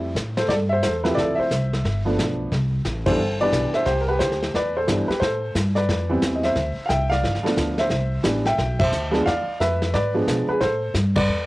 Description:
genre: jazz piano trio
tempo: 178 BPM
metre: 4/4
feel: swing 64% on 8ths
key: C major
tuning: A4 = 442 Hz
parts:
  - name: clear upright piano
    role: melody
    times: 0.0-11.5 s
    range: E3 to G5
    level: -22 LUFS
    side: equal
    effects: cassette tape
  - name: upright bass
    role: bass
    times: 0.0-11.5 s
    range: G1 to B2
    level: -25 LUFS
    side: equal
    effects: none
  - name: vintage brush drum kit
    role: drums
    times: 0.2-11.5 s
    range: brushed snare drum, crash cymbal, hi-hat, kick drum, ride cymbal, snare drum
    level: -27 LUFS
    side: equal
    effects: none
room: little or no reverb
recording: home recording on cassette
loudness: -19 LUFS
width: side -19 dB against mid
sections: 0.0-5.2 A section; 5.2-11.5 B section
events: band accent 3.0, 8.8, 11.1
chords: 0.0 Fmaj9; 1.2 Dm7; 1.8 G7; 2.5 Cmaj7; 5.2 Am7; 6.6 Dsus2; 7.2 G7; 7.9 Cmaj9; 9.3 E7b9; 10.6 Am9

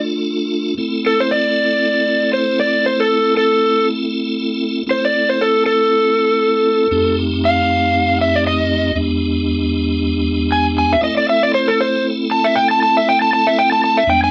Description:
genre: blues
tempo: 117 BPM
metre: 4/4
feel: swing 55% on 16ths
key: A minor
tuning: A4 = 443 Hz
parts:
  - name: tonewheel organ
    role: accompaniment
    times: 0.0-14.3 s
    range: E2 to A4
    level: -20 LUFS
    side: equal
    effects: slow rotary speaker, chorus vibrato
  - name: overdriven slide guitar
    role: melody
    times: 1.1-14.3 s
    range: A4 to A5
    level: -16 LUFS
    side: equal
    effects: none
room: moderate small room reverb, RT60 0.5 s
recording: band playing live in one room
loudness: -16 LUFS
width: mono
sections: 0.0-14.3 A section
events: electric slide guitar solo 0.0-14.3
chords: 0.0 Dm; 0.8 Am; 6.9 F7; 9.0 E7#9; 11.0 Am

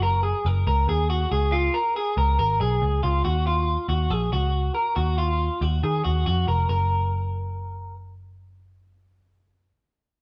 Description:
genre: jangly indie pop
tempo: 139 BPM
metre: 4/4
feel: straight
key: F# major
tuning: A4 = 440 Hz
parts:
  - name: electric guitar through a small old amp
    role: arpeggios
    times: 0.0-7.9 s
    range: E#4 to A#4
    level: -27 LUFS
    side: equal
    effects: vibrato effect
  - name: vintage muted picked electric bass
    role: bass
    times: 0.0-9.7 s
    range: E#1 to D#3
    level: -26 LUFS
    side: equal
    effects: none
room: moderate stone room reverb, RT60 1.1 s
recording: band playing live in one room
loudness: -23 LUFS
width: mono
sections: 0.0-3.2 A section; 3.2-6.7 B section; 6.7-10.1 C section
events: none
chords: 0.0 F#; 1.3 C#; 3.2 D#m; 6.7 F#

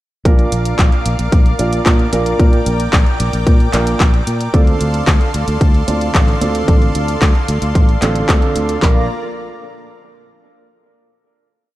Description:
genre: italo disco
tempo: 112 BPM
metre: 4/4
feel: straight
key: Bb major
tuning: A4 = 440 Hz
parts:
  - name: lush unison pad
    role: sustained chords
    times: 0.3-9.1 s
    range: Bb3 to D6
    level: -23 LUFS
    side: equal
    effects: chorus
  - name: dark concert grand piano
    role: stabs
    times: 0.3-9.0 s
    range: Bb2 to D5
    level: -21 LUFS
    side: right 3 dB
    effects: tape echo
  - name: fingered electric bass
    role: bass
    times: 0.3-9.1 s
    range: A1 to Bb2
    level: -18 LUFS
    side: equal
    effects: tube saturation
  - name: house drum kit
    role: drums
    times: 0.3-8.9 s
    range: handclaps, kick drum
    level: -12 LUFS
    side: equal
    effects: overdrive
  - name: house drum kit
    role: drums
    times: 0.3-8.8 s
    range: handclaps, hi-hat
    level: -21 LUFS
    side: equal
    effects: overdrive
room: light reverb, digital ambience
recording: dark, warm production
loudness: -11 LUFS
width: side -16 dB against mid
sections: 0.3-8.8 verse; 8.8-11.0 final chord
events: none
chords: 0.3 Bb; 4.5 Dm7; 8.8 Bb

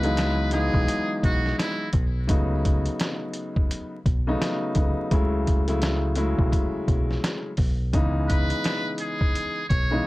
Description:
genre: hip hop, boom-bap hip-hop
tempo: 85 BPM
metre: 4/4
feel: swing 62% on 16ths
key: unclear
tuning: A4 = 439 Hz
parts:
  - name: trumpet with metal mute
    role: melody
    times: 0.0-1.9, 8.3-10.1 s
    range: E4 to C#5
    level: -29 LUFS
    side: equal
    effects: high-pass filter, low-pass filter, ping-pong delay
  - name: dark baby grand piano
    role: accompaniment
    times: 0.0-10.1 s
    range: C#2 to E4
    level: -27 LUFS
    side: left 1 dB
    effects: high-pass filter, low-pass filter
  - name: deep dub fingered electric bass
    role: bass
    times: 0.0-10.0 s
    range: B1 to C#2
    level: -25 LUFS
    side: equal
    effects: none
  - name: trip hop sampler-style drum kit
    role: drums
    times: 0.0-9.9 s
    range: hi-hat, kick drum, snare drum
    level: -24 LUFS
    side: equal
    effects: none
room: little or no reverb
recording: vinyl crackle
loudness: -22 LUFS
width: side -19 dB against mid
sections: 0.0-10.1 A section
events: none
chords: 0.0 Emaj7; 2.3 B7/C#; 5.1 F#m7; 7.9 C#m7

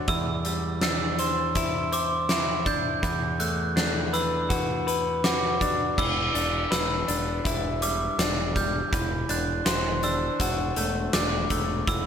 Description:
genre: post-rock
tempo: 81 BPM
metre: 4/4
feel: straight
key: E minor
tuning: A4 = 440 Hz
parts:
  - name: electric guitar through a small old amp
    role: arpeggios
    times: 0.0-12.1 s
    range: E3 to C5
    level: -28 LUFS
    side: left 2 dB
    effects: digital delay, slapback echo
  - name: glockenspiel with hard plastic mallets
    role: arpeggios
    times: 0.0-12.1 s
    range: D6 to G6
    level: -30 LUFS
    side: right 3 dB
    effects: digital delay, slapback echo
  - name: growling picked electric bass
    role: bass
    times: 0.0-12.1 s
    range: E1 to E2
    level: -31 LUFS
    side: right 1 dB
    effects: overdrive
  - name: huge arena drum kit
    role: drums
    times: 0.1-12.0 s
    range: crash cymbal, hi-hat, kick drum, snare drum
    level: -28 LUFS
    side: equal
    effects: none
room: wet lush hall reverb, RT60 2.7 s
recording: big arena sound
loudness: -23 LUFS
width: side -8 dB against mid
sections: 0.0-6.0 A section; 6.0-12.1 B section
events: none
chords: 0.1 Cadd9/E; 3.0 Bm7/E; 6.0 Em7; 8.9 D7/E

